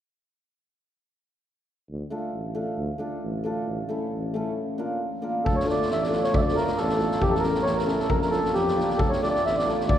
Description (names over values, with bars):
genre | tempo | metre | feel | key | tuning
balkan folk, Balkan wedding band | 135 BPM | 2/4 | swing 54% on 16ths | D harmonic minor | A4 = 440 Hz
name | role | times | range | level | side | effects
warm tuba | bass | 1.9-10.0 s | A1 to F2 | -31 LUFS | equal | none
hammered dulcimer | accompaniment | 2.1-9.8 s | A3 to Bb4 | -28 LUFS | equal | none
mellow accordion | melody | 5.4-10.0 s | G4 to E5 | -24 LUFS | equal | none
street-band drum kit | percussion | 5.5-10.0 s | kick drum, snare drum | -28 LUFS | left 1 dB | none
room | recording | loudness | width
wet cathedral reverb, RT60 6.4 s | recorded in a church or concert hall | -23 LUFS | side -10 dB against mid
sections
1.9-5.5 A section; 5.5-10.0 B section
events
none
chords
1.9 Dm; 3.7 A; 4.6 Bb; 5.5 Dm; 7.2 A; 8.1 Bb; 9.0 Dm